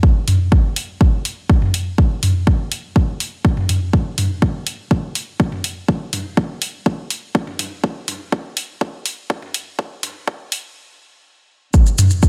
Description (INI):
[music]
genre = techno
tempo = 123 BPM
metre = 4/4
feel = straight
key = none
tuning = none
[part]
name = electronic kick drum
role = drums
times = 0.0-12.3 s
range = none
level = -17 LUFS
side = equal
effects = none
[part]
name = house drum kit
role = drums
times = 0.3-12.1 s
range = hi-hat, toms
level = -22 LUFS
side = equal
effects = sidechain pumping on hats, sidechain pumping on toms
[part]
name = maracas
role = percussion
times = 11.7-12.3 s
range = none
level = -26 LUFS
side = equal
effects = none
[sound]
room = little or no reverb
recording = high-pass filter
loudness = -19 LUFS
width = mono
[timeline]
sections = 0.0-11.7 A section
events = build-up 0.0-11.7; filter sweep 0.0-11.7; stop 10.8-11.7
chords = none